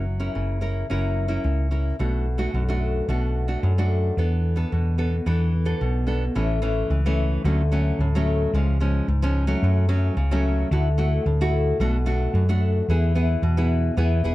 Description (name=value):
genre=samba and choro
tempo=110 BPM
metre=4/4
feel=straight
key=unclear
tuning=A4 = 440 Hz
part: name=nylon-string guitar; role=accompaniment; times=0.0-14.3 s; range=F#2 to A#4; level=-25 LUFS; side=left 1 dB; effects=none
part: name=hollow-body short-scale fingered electric bass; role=bass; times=0.0-14.3 s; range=E1 to F#2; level=-22 LUFS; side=equal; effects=none
room=light reverb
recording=dark, warm production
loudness=-20 LUFS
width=side -17 dB against mid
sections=0.0-6.4 A section; 6.4-14.3 B section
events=none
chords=0.0 F#7; 2.0 Bm7; 4.2 E7sus4; 6.4 A; 7.4 Dmaj7; 8.5 C#; 9.6 F#m; 10.7 Dadd9; 11.8 Bm7; 12.9 E